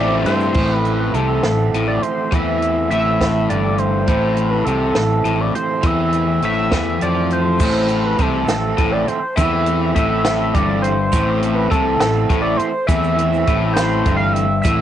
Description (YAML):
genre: indie rock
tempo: 68 BPM (dotted quarters)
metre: 6/8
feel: straight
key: A minor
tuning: A4 = 439 Hz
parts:
  - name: sync lead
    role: melody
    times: 0.0-14.8 s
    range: A4 to F5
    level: -20 LUFS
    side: right 1 dB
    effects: chorus, cassette tape
  - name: brassy analog pad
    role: sustained chords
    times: 0.0-0.5 s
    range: A4 to C6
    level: -31 LUFS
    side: right 1 dB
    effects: none
  - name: overdriven electric guitar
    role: riff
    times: 0.0-14.8 s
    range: G2 to E4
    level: -21 LUFS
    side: left 7 dB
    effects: cassette tape
  - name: overdriven electric guitar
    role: riff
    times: 0.0-14.8 s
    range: E3 to C4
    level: -23 LUFS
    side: right 10 dB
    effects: lush chorus, cassette tape, analog delay
  - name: growling fingered electric bass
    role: bass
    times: 0.0-14.8 s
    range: G1 to G2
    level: -22 LUFS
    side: equal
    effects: overdrive
  - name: compact cocktail drum kit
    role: drums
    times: 0.3-14.8 s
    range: crash cymbal, hi-hat, kick drum, ride cymbal, snare drum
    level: -21 LUFS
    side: right 1 dB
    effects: cassette tape
  - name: egg shaker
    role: percussion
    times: 0.3-0.5, 7.6-14.8 s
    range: none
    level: -40 LUFS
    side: left 10 dB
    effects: none
room: light reverb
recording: home recording on cassette, nothing above 11.0 kHz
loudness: -15 LUFS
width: side -10 dB against mid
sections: 0.6-7.6 A section; 7.6-14.8 B section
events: none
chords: 0.0 Am